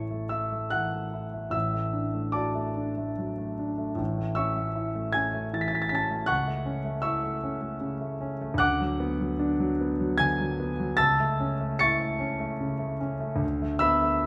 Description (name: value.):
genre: classical, romantic nocturne for solo piano.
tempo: 70-80 BPM.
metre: 3/4.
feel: rubato.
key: A major.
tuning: A4 = 439 Hz.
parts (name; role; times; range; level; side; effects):
warm concert grand piano; solo; 0.0-14.3 s; A1 to C#7; -28 LUFS; equal; none.
room: moderate recital hall reverb, RT60 1.4 s.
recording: none.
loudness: -28 LUFS.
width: mono.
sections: 0.0-14.3 A section.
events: none.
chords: 0.0 A; 1.5 D/A; 4.0 A; 6.3 A/C#; 8.6 Bm/D; 11.0 A/C#; 13.4 Bm7/D.